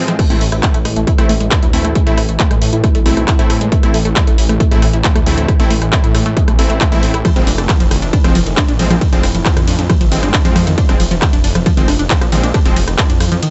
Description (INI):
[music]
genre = driving peak-time techno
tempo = 136 BPM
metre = 4/4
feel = straight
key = A harmonic minor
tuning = A4 = 440 Hz
[part]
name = supersaw stab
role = stabs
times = 0.0-12.8 s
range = F3 to E4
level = -24 LUFS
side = equal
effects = cassette tape, sidechain pumping, tape echo
[part]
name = analog drone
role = drone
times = 0.0-13.5 s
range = A2 to E3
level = -26 LUFS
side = equal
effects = none
[part]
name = tight sequenced synth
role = riff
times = 0.1-13.5 s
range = D#3 to E4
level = -22 LUFS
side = equal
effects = chorus, phaser, tube saturation, sidechain pumping, dub echo
[part]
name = techno drum kit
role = drums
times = 0.1-13.5 s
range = crash cymbal, handclaps, hi-hat, ride cymbal, rim click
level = -23 LUFS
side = equal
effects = none
[part]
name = electronic kick drum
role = drums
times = 0.2-13.1 s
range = none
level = -16 LUFS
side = equal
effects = none
[part]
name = detuned saw bass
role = bass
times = 0.3-13.4 s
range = F1 to A2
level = -21 LUFS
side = equal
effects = tube saturation, sidechain pumping
[sound]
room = digital ambience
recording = nothing above 8.0 kHz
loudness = -13 LUFS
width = mono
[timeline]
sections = 0.0-13.5 A section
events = break 0.0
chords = 0.2 Am; 7.2 Fm